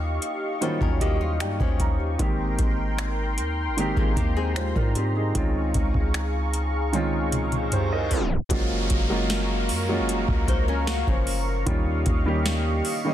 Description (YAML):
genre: contemporary R&B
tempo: 76 BPM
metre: 4/4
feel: straight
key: unclear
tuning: A4 = 439 Hz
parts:
  - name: warm baby grand piano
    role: accompaniment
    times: 0.0-13.1 s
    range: Eb3 to Bb5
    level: -28 LUFS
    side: right 1 dB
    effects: none
  - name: warm analog pad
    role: sustained chords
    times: 0.0-13.1 s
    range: G4 to Db6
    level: -31 LUFS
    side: equal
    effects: chorus
  - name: warm 808-style bass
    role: bass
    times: 0.0-12.8 s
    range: Gb1 to Ab2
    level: -27 LUFS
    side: equal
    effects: none
  - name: booming analog drum machine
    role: drums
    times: 0.2-13.0 s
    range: finger snaps, hi-hat, kick drum, snare drum, toms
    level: -26 LUFS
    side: equal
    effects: overdrive, soft clipping on snare
  - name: flamenco guitar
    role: arpeggios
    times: 0.6-5.3, 10.5-11.6 s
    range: F3 to C5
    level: -33 LUFS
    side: left 8 dB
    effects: digital delay
  - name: reverse cymbal and downlifter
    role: sound effects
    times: 7.4-13.1 s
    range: none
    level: -35 LUFS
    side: left 1 dB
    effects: none
room: little or no reverb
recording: dense, heavily limited modern master, tape stop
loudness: -22 LUFS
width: side -11 dB against mid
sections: 0.0-8.5 A section; 8.5-13.1 B section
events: grand piano fill 0.6-2.2; drum fill 6.9-8.5; reverse cymbal 7.4-8.5; tape stop 8.1-8.5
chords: 0.0 Eb9; 2.2 Abmaj9; 5.3 Dbmaj7; 8.5 Gbmaj7; 11.7 Eb9